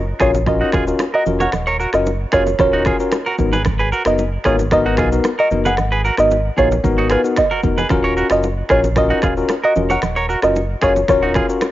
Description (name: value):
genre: afrobeats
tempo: 113 BPM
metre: 4/4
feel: straight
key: Eb minor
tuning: A4 = 439 Hz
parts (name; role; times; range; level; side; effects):
- sub bass with octave; bass; 0.0-11.4 s; Eb1 to Cb2; -22 LUFS; equal; none
- soft round pluck; melody; 0.2-11.5 s; Cb5 to Gb5; -18 LUFS; right 1 dB; chorus, cassette tape, analog delay
- bell-like tine electric piano; accompaniment; 0.2-11.7 s; Cb4 to Bb4; -20 LUFS; left 4 dB; cassette tape
- clean electric guitar; riff; 0.2-11.5 s; Eb4 to Db5; -22 LUFS; right 3 dB; cassette tape, analog delay
- afro-pop drum kit; drums; 0.2-11.7 s; finger snaps, kick drum, rim click, shaker; -22 LUFS; equal; cassette tape
- bongos and congas; percussion; 0.3-11.7 s; none; -26 LUFS; right 5 dB; none
room: light reverb, digital ambience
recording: home recording on cassette, nothing above 7.5 kHz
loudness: -14 LUFS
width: side -14 dB against mid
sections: 0.0-11.7 A section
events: none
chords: 0.0 Ebm7; 3.4 Abm7; 7.9 Ebm7